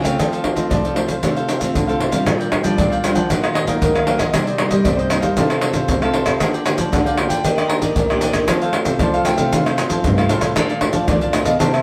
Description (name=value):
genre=samba and choro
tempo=116 BPM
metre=4/4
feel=straight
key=Bb major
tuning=A4 = 441 Hz
part: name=warm concert grand piano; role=melody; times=0.0-11.8 s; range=C5 to Bb5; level=-27 LUFS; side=equal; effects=none
part: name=cavaquinho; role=accompaniment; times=0.0-11.8 s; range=D4 to A5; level=-29 LUFS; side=equal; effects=none
part: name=nylon-string guitar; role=accompaniment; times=0.0-11.8 s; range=F2 to A4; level=-25 LUFS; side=equal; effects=none
part: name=nylon-string guitar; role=bass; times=0.0-11.8 s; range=G2 to C4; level=-24 LUFS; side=equal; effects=none
part: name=maracas, surdo, pandeiro and tamborim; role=percussion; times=0.0-11.8 s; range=none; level=-21 LUFS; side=equal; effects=none
room=wet studio reverb, RT60 0.8 s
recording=band playing live in one room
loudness=-18 LUFS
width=mono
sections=0.0-2.3 A section; 2.3-11.8 B section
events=none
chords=0.2 F; 2.3 Bb6; 3.3 Ebmadd9/Bb; 4.3 Cm7; 5.4 F/C; 6.4 Bb6/D; 7.5 Ebmaj7; 8.5 F; 10.6 Bbmaj7